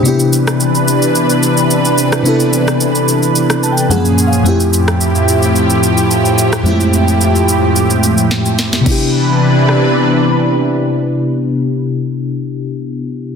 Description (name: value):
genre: amapiano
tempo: 109 BPM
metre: 4/4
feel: straight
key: C major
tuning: A4 = 441 Hz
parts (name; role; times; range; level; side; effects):
- crystalline FM electric piano; accompaniment; 0.0-13.4 s; F2 to A5; -14 LUFS; left 2 dB; chorus, tremolo
- lush unison pad; sustained chords; 0.0-11.8 s; A2 to B4; -14 LUFS; right 1 dB; chorus, phaser, sidechain pumping
- afro-pop drum kit; drums; 0.1-9.8 s; crash cymbal, kick drum, rim click, shaker, snare drum; -19 LUFS; right 1 dB; soft clipping on snare
room: light reverb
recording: dense, heavily limited modern master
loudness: -10 LUFS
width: side -6 dB against mid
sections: 0.0-8.9 A section; 8.9-11.1 B section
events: FM electric piano fill 3.4-4.5; drum fill 8.3-8.9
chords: 0.1 Cmaj9; 3.9 F#maj9; 4.5 Fmaj9; 8.9 Cmaj9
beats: | 0.05 0.60 1.15 1.70 | 2.25 2.81 3.35 3.91 | 4.46 5.01 5.56 6.11 | 6.66 7.21 7.76 8.31 | 8.86 9.41 9.96 10.51